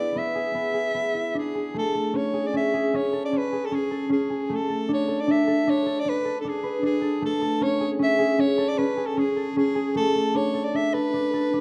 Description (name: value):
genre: contemporary instrumental, contemporary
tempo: 153 BPM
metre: 7/4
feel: straight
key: unclear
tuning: A4 = 441 Hz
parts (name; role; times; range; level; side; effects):
- breathy soprano saxophone; melody; 0.0-11.6 s; G#4 to E5; -28 LUFS; equal; none
- concert harp; arpeggios; 0.0-11.6 s; A3 to B4; -26 LUFS; equal; none
room: wet recital hall reverb, RT60 1.4 s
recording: none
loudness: -24 LUFS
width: mono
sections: 0.0-1.8 A section; 1.8-11.6 B section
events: none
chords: 0.0 E; 1.8 Amaj7; 4.5 E7sus4 (rootless); 7.2 Amaj7; 10.0 Aadd9